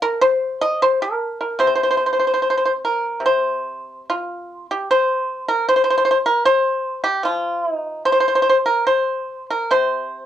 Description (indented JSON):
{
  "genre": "chinese traditional, Chinese solo plucked strings",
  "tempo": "74 BPM",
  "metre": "2/4",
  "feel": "uneven beats, rubato",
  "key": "unclear",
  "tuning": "A4 = 440 Hz",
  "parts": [
    { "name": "pipa", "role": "solo", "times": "0.0-10.3 s", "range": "C3 to Eb5", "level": "-17 LUFS", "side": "equal", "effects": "none" }
  ],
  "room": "moderate studio reverb, RT60 0.5 s",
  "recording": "worn, warbling old tape, cassette tape, warbly pitch drift",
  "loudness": "-17 LUFS",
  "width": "side -10 dB against mid",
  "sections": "0.0-3.2 A section; 3.2-10.3 B section",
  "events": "none",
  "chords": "none"
}